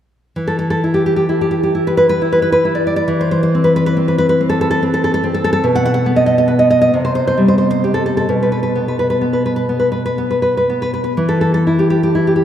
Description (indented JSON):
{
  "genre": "romantic piece for solo classical guitar",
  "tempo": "39-48 BPM (dotted quarters)",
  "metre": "6/8",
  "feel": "rubato",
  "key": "unclear",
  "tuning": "A4 = 440 Hz",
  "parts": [
    { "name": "nylon-string guitar", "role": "solo", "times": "0.4-12.4 s", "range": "B2 to F#5", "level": "-12 LUFS", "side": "equal", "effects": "none" }
  ],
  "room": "wet cathedral reverb, RT60 6.2 s",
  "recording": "in a vast, echoing space",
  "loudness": "-13 LUFS",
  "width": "side -10 dB against mid",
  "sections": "0.4-12.4 A section",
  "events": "none",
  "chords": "0.4 N.C.; 3.1 Amadd9/E; 5.7 N.C.; 7.0 C5; 8.3 N.C."
}